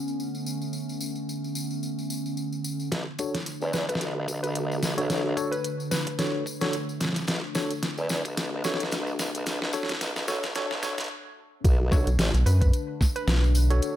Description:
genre	glitch hop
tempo	110 BPM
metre	4/4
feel	swing 56% on 16ths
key	B minor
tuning	A4 = 440 Hz
part	warbly tape-like pad	sustained chords	0.0-14.0 s	D3 to D4	-34 LUFS	equal	chorus, built-in reverb, sidechain pumping
part	tambourine	percussion	0.1-13.9 s	none	-39 LUFS	left 2 dB	none
part	formant-sweep wobble bass	bass	2.9-12.3 s	A1 to E2	-30 LUFS	equal	chorus, tube saturation, high-pass filter
part	electronic kick drum	drums	2.9-13.1 s	none	-23 LUFS	equal	overdrive, high-pass filter on kick, high-pass filter on room
part	pop drum kit	drums	2.9-13.9 s	hi-hat, snare drum	-30 LUFS	equal	overdrive, low-pass filter on snare, low-pass filter on hats, low-pass filter on room
part	mellow tine electric piano	stabs	3.2-14.0 s	D4 to C#5	-31 LUFS	equal	medium stereo tremolo, sidechain pumping, low-pass filter, tape echo
part	woody wave-folded pluck	melody	3.7-6.5, 12.5-13.3 s	B4	-35 LUFS	left 1 dB	chorus, tape echo
part	rubbery square bass	bass	12.1-13.8 s	B1 to F#2	-20 LUFS	equal	tube saturation
room	light reverb, digital ambience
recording	high-pass filter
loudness	-25 LUFS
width	side -12 dB against mid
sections	0.0-2.9 A section; 2.9-11.6 B section; 11.6-14.0 C section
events	build-up 2.9-11.6; drum fill 2.9-11.1; filter sweep on tine electric piano 2.9-11.6; filter sweep on ambient pad 2.9-11.6; filter sweep 2.9-11.6; stop 11.1-11.6; drop 11.6-14.0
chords	0.0 Bm9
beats	0.19 | 0.74 1.28 1.83 2.37 | 2.92 3.46 4.01 4.55 | 5.10 5.64 6.19 6.74 | 7.28 7.83 8.37 8.92 | 9.46 10.01 10.55 11.10 | 11.64 12.19 12.74 13.28 | 13.83

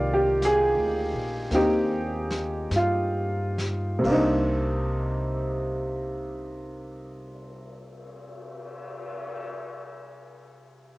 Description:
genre	jazz ballad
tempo	43-59 BPM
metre	4/4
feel	swing 69% on 8ths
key	C minor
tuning	A4 = 440 Hz
part	warm upright piano	accompaniment	0.0-11.0 s	C3 to D5	-25 LUFS	equal	cassette tape
part	upright bass	bass	0.0-8.2 s	Bb1 to G2	-31 LUFS	equal	none
part	vintage brush drum kit	drums	0.4-9.4 s	crash cymbal, cymbal swell, hi-hat, kick drum, snare drum	-38 LUFS	left 2 dB	none
room	light reverb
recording	home recording on cassette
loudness	-23 LUFS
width	side -20 dB against mid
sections	0.0-4.1 A section; 4.1-9.6 B section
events	slowing down 0.0-4.1; drum fill 1.5-4.1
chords	0.0 Cm9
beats	0.42 1.52 2.72 | 4.05 5.45 6.84 8.24

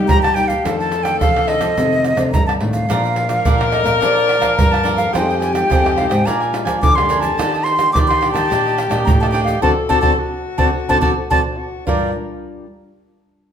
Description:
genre	samba and choro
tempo	107 BPM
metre	4/4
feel	straight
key	G minor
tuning	A4 = 440 Hz
part	warm tenor saxophone	second line	0.0-12.1 s	D4 to Bb4	-22 LUFS	left 4 dB	none
part	nylon-string guitar	accompaniment	0.0-12.7 s	F2 to Bb4	-25 LUFS	left 5 dB	none
part	nylon-string guitar	bass	0.0-12.1 s	F2 to G3	-22 LUFS	equal	none
part	breathy silver concert flute	melody	0.1-12.1 s	D5 to D6	-18 LUFS	equal	none
part	tube shaker, surdo, pandeiro and tamborim	percussion	0.1-12.0 s	none	-20 LUFS	right 2 dB	none
part	cavaquinho	accompaniment	2.9-12.1 s	D4 to Bb5	-24 LUFS	right 5 dB	none
room	wet large studio reverb, RT60 1.4 s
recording	minimal, uncompressed stereo recording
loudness	-14 LUFS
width	side -8 dB against mid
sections	0.0-11.9 A section; 11.9-13.5 B section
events	band accent 9.6-11.9; drum fill 11.4-11.9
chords	0.0 Cm7 (rootless); 0.6 F13; 2.9 Bbmaj7; 5.1 Fm9; 6.3 Bb6; 7.4 Ebmaj7; 9.6 D7; 11.9 Gm7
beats	0.08 | 0.65 1.21 1.77 2.33 | 2.89 3.46 4.02 4.58 | 5.14 5.70 6.26 6.82 | 7.38 7.95 8.51 9.07 | 9.63 10.19 10.75 11.31 | 11.87 12.43

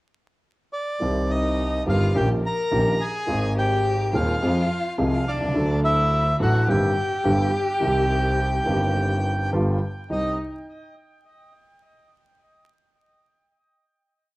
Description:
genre	tango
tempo	106 BPM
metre	4/4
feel	rubato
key	C minor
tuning	A4 = 441 Hz
part	bandoneon	melody	0.7-10.4 s	D5 to Bb5	-26 LUFS	right 1 dB	tape echo
part	warm baby grand piano	accompaniment	1.0-10.3 s	Eb1 to C5	-24 LUFS	equal	none
part	clear double bass	bass	1.0-10.3 s	G1 to F2	-25 LUFS	equal	none
part	rich violin	second line	1.3-10.4 s	D4 to Bb4	-28 LUFS	left 3 dB	none
room	light reverb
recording	worn, warbling old tape, cassette tape, vinyl crackle, warbly pitch drift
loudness	-20 LUFS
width	side -20 dB against mid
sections	0.0-1.0 pickup bar; 1.0-10.1 A section; 10.1-12.4 final chord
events	none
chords	0.0 N.C.; 1.0 Cm; 2.1 Eb7/Bb; 3.3 Ab; 4.4 Fm; 5.6 D; 6.7 Cm/G; 7.3 G; 7.8 Cm; 9.5 G7; 10.1 Cm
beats	0.44 | 1.01 1.58 2.15 2.72 | 3.29 3.85 4.42 4.99 | 5.55 6.12 6.69 7.25 | 7.82 8.39 8.96 9.53 | 10.10

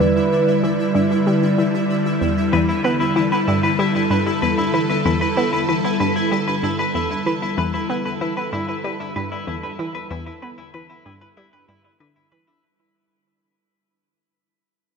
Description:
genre	ambient, sequencer-driven space music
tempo	95 BPM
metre	4/4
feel	straight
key	E minor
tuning	A4 = 440 Hz
part	mellow horn-like synth lead	melody	0.0-0.9 s	B4	-25 LUFS	right 1 dB	chorus, tape echo
part	evolving wavetable pad	sustained chords	0.0-12.6 s	D3 to D5	-21 LUFS	equal	ensemble chorus, built-in reverb
part	analog pluck	riff	0.0-12.5 s	E2 to B3	-24 LUFS	equal	chorus, tape echo
part	pulsing gated texture	texture	0.0-12.7 s	E4 to A5	-29 LUFS	right 2 dB	chorus, built-in reverb
part	semi-hollow electric guitar	arpeggios	2.5-12.6 s	E4 to B4	-24 LUFS	left 2 dB	auto-pan, tape echo
room	wet huge ambient reverb, RT60 7.3 s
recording	dreamy mix soaked in reverb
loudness	-17 LUFS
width	side -6 dB against mid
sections	0.0-12.6 A section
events	fade-out 5.9-12.6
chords	0.0 Em7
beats	| 0.00 0.63 1.27 1.90 | 2.53 3.16 3.79 4.42 | 5.05 5.69 6.32 6.95 | 7.58 8.21 8.85 9.48 | 10.11 10.74 11.37 12.00

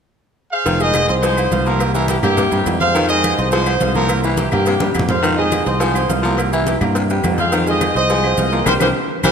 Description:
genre	latin, salsa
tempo	210 BPM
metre	4/4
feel	straight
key	F minor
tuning	A4 = 436 Hz
part	bright horn section	melody	0.5-9.3 s	Bb3 to F5	-19 LUFS	equal	none
part	raspy baritone saxophone	second line	0.7-9.3 s	C3 to F3	-23 LUFS	left 4 dB	none
part	clear concert grand piano	accompaniment	0.7-9.3 s	E3 to F6	-22 LUFS	right 3 dB	none
part	sustaining fretless electric bass	bass	0.7-9.3 s	F1 to G2	-20 LUFS	equal	none
part	agogo bells and timbales	percussion	0.7-9.3 s	none	-27 LUFS	right 5 dB	none
part	congas	percussion	0.7-9.3 s	none	-26 LUFS	left 2 dB	none
part	cowbell	percussion	0.7-9.3 s	none	-27 LUFS	equal	none
part	maracas	percussion	0.7-9.3 s	none	-33 LUFS	right 6 dB	none
part	claves	percussion	0.9-9.3 s	none	-32 LUFS	left 8 dB	none
room	wet concert hall reverb, RT60 2.4 s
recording	none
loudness	-14 LUFS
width	side -7 dB against mid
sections	0.7-9.3 A section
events	drum fill 4.8-5.2, 9.0-9.3; band accent 8.7-9.3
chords	0.0 Ab6; 0.7 Fm7; 1.8 C7; 2.9 Fm7; 4.1 C7; 5.2 Fm7; 6.4 C7; 7.5 Fm7; 8.7 C7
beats	0.09 0.37 | 0.66 0.94 1.23 1.52 | 1.80 2.09 2.38 2.66 | 2.95 3.23 3.52 3.81 | 4.09 4.38 4.67 4.95 | 5.24 5.52 5.81 6.10 | 6.38 6.67 6.95 7.24 | 7.53 7.81 8.10 8.38 | 8.67 8.96 9.24

